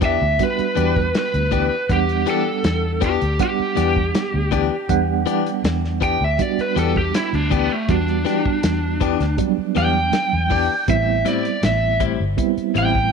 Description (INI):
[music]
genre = straight-eighth soul blues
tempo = 80 BPM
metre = 4/4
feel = straight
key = E minor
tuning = A4 = 440 Hz
[part]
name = mellow reed electric piano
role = accompaniment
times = 0.0-13.1 s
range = F#3 to F#5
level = -23 LUFS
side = right 15 dB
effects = medium tremolo
[part]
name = direct-recorded clean electric guitar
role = stabs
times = 0.0-13.0 s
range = A2 to G4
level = -25 LUFS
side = left 15 dB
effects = tremolo
[part]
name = vintage muted fingered electric bass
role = bass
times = 0.0-13.1 s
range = G1 to E2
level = -22 LUFS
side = left 1 dB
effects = none
[part]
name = warm soul drum kit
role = drums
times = 0.0-13.1 s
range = hi-hat, kick drum, snare drum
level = -24 LUFS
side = left 1 dB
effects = none
[part]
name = lead guitar through a small cranked amp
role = melody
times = 0.1-13.1 s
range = A3 to G5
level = -22 LUFS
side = right 1 dB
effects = overdrive
[sound]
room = light reverb, small room ambience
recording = 1960s-style stereo with parts hard left and right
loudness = -17 LUFS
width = side -5 dB against mid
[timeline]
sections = 0.0-13.1 A section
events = lead electric guitar solo 0.0-13.1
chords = 0.0 Em7; 10.9 Am7